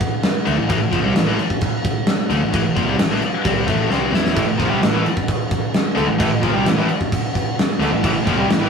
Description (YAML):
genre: heavy metal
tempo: 131 BPM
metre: 4/4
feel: straight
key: A minor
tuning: A4 = 440 Hz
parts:
  - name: big rock drum kit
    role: drums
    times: 0.0-8.6 s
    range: crash cymbal, kick drum, snare drum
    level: -19 LUFS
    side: equal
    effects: none
  - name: crunchy overdriven guitar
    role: riff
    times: 0.5-8.7 s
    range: A2 to E4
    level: -24 LUFS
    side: equal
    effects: none
  - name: high-gain distorted guitar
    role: riff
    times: 0.5-8.7 s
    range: A2 to E4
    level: -23 LUFS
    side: left 5 dB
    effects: distortion
  - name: picked electric bass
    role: bass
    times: 0.5-8.7 s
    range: A1 to E2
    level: -25 LUFS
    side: equal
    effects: none
  - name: tight distorted guitar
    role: riff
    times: 4.4-8.7 s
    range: A2 to A3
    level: -22 LUFS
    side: right 3 dB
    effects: distortion
room: light reverb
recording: rough rehearsal-room recording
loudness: -16 LUFS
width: side -6 dB against mid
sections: 0.0-8.7 A section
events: drum fill 3.9-4.4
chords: 0.0 Am